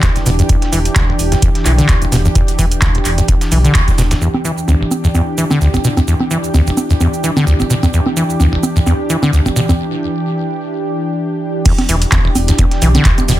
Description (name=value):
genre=acid house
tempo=129 BPM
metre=4/4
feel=swing 55% on 16ths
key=E minor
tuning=A4 = 440 Hz
part: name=lush unison pad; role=sustained chords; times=0.0-13.4 s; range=E3 to G4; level=-20 LUFS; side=equal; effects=chorus, sidechain pumping
part: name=acid bass, saw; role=riff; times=0.0-13.3 s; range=E1 to E3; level=-14 LUFS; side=equal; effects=tube saturation, cassette tape, digital delay
part: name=booming analog drum machine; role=drums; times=0.0-13.4 s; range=congas, crash cymbal, handclaps, hi-hat, shaker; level=-19 LUFS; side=right 2 dB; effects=overdrive
part: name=dusty soul sampler-style drum kit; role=drums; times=0.0-4.2, 11.7-13.4 s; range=hi-hat, shaker, snare drum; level=-28 LUFS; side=left 2 dB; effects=sidechain pumping on perc, high-pass filter on perc, high-pass filter on snare, sidechain pumping on hats, high-pass filter on hats
part: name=electronic kick drum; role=drums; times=0.0-4.0, 11.7-13.2 s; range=none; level=-14 LUFS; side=equal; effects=overdrive
part: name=round analog bass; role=bass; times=0.3-4.1, 11.9-13.4 s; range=E1 to B1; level=-15 LUFS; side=equal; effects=sidechain pumping
room=moderate studio ambience, RT60 0.5 s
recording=dense, heavily limited modern master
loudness=-11 LUFS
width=side -14 dB against mid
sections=0.0-4.2 A section; 4.2-11.7 B section; 11.7-13.4 C section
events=band accent 3.7; break 9.8-11.7; drop 11.7-13.4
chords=0.0 Em7